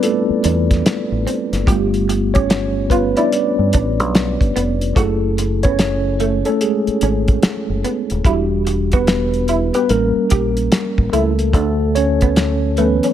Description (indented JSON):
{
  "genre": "R&B, neo-soul",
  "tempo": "73 BPM",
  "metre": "4/4",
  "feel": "swing 63% on 16ths",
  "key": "unclear",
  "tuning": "A4 = 440 Hz",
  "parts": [
    { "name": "tine electric piano", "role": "accompaniment", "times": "0.0-13.1 s", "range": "E3 to D5", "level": "-18 LUFS", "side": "equal", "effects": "medium stereo tremolo" },
    { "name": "cloth-damped thuddy drum kit", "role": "drums", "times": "0.0-13.1 s", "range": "hi-hat, kick drum, snare drum", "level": "-18 LUFS", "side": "equal", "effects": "none" },
    { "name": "deep dub fingered electric bass", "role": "bass", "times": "0.3-13.0 s", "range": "D#1 to G2", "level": "-20 LUFS", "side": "equal", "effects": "none" },
    { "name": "electric guitar through a small old amp", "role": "second line", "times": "0.4-13.1 s", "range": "A3 to G4", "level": "-23 LUFS", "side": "right 5 dB", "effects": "ensemble chorus" }
  ],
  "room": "light reverb, studio ambience",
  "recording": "none",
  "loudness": "-14 LUFS",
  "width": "side -10 dB against mid",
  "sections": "0.0-13.1 A section",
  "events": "tine electric piano solo 0.0-13.1",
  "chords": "0.0 Dm11; 1.7 G9; 5.0 F#m7; 8.2 Em7; 9.9 A7b9; 11.5 Dmaj9"
}